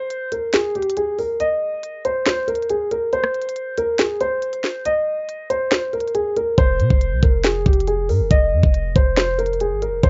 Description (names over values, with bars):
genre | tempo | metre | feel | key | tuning
hip hop, trap | 139 BPM | 4/4 | half-time | F minor | A4 = 437 Hz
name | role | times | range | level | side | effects
dark concert grand piano | melody | 0.0-10.1 s | G4 to Eb5 | -23 LUFS | equal | low-pass filter, plate reverb
trap drum kit | drums | 0.1-10.1 s | hi-hat, kick drum, rim click, snare drum | -20 LUFS | equal | none
clean 808-style bass | bass | 6.6-10.1 s | F1 to C3 | -23 LUFS | equal | none
room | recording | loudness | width
light reverb | worn, warbling old tape, cassette tape, warbly pitch drift, nothing above 7.6 kHz | -20 LUFS | mono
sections
0.0-10.1 A section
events
break 0.0-4.9; kick muted 4.9-5.7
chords
0.0 N.C.; 4.9 F7(no3)